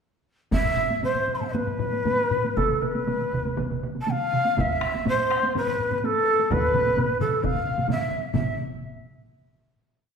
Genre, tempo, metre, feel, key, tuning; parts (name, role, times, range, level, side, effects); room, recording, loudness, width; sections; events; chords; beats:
japanese traditional, taiko drum ensemble; 116-141 BPM; 4/4; straight; A4 = 440 Hz
breathy shakuhachi; melody; 0.5-8.6 s; A4 to C6; -24 LUFS; equal
taiko ensemble; percussion; 0.5-8.6 s; -31 LUFS; right 1 dB
taiko ensemble; percussion; 0.5-8.8 s; -31 LUFS; left 3 dB
taiko ensemble; percussion; 0.5-8.6 s; -30 LUFS; equal
taiko ensemble; percussion; 2.6-8.8 s; -31 LUFS; right 4 dB
wet scoring stage reverb, RT60 1.4 s; minimal, uncompressed stereo recording; -22 LUFS; side -6 dB against mid
0.5-8.4 A section; 8.4-10.1 final note
speeding up 0.5-10.1
| 0.52 1.04 1.55 2.07 | 2.58 3.08 3.59 4.09 | 4.58 5.07 5.56 6.04 | 6.51 6.98 7.44 7.90 | 8.35